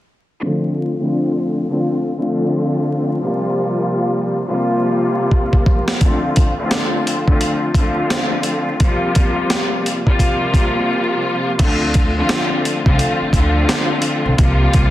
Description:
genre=hip hop, boom-bap hip-hop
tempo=86 BPM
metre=4/4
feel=swing 62% on 16ths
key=D minor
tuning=A4 = 443 Hz
part: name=rich studio string section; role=accompaniment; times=0.4-14.9 s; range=C3 to F4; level=-17 LUFS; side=left 1 dB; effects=high-pass filter, low-pass filter
part: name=boom bap sampler-style drum kit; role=drums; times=5.3-14.9 s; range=crash cymbal, hi-hat, kick drum, snare drum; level=-16 LUFS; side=equal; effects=none
part: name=upright bass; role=bass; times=11.6-14.9 s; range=B1 to D2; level=-18 LUFS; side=equal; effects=none
room=light reverb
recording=dense, heavily limited modern master, vinyl crackle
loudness=-15 LUFS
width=side -14 dB against mid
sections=0.4-11.6 A section; 11.6-14.9 B section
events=filter sweep on string section 0.4-11.6; drum fill 5.3-6.0; break 10.9-11.6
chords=0.4 Dm7; 3.2 C7sus4; 6.0 Dm7; 8.8 C7sus4; 11.6 Dm7; 14.4 C7sus4

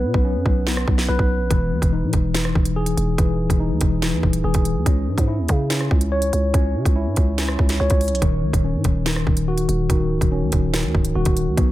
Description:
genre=hip hop, drill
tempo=143 BPM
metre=4/4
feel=half-time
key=Eb phrygian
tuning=A4 = 440 Hz
part: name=mellow tine electric piano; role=arpeggios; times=0.0-11.7 s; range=Eb3 to Db5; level=-22 LUFS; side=left 2 dB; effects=medium stereo tremolo, low-pass filter, analog delay
part: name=growling 808-style bass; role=bass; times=0.0-11.7 s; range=Db1 to Db3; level=-22 LUFS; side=equal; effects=none
part: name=drill drum kit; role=drums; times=0.1-11.7 s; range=hi-hat, kick drum, rim click, snare drum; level=-20 LUFS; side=equal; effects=none
room=light reverb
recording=echo-heavy mix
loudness=-17 LUFS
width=side -15 dB against mid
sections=0.0-11.7 A section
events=break 0.0-1.5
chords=0.0 Bsus2; 1.5 Emaj7; 4.9 Dbm; 8.2 Ebm7

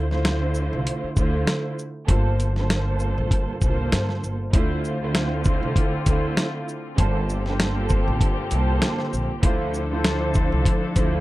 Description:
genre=hip hop, boom-bap hip-hop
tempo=98 BPM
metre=4/4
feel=swing 55% on 16ths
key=D minor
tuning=A4 = 440 Hz
part: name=dark studio string section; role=accompaniment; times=0.0-11.2 s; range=G2 to C5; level=-25 LUFS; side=right 2 dB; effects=cassette tape, high-pass filter, low-pass filter
part: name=upright bass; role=bass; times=0.0-11.2 s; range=G1 to G2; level=-26 LUFS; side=equal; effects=none
part: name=dusty soul sampler-style drum kit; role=drums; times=0.1-11.1 s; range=hi-hat, kick drum, shaker, snare drum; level=-22 LUFS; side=equal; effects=none
part: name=warm studio string section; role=stabs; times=4.5-11.2 s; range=D3 to A4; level=-30 LUFS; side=left 3 dB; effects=high-pass filter, low-pass filter, digital delay
room=little or no reverb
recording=dark, warm production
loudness=-20 LUFS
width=side -17 dB against mid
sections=0.0-4.5 A section; 4.5-11.2 B section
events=none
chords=0.0 Dm7; 2.1 Gm11; 4.5 Dm7; 7.0 Gm11; 9.4 Dm7

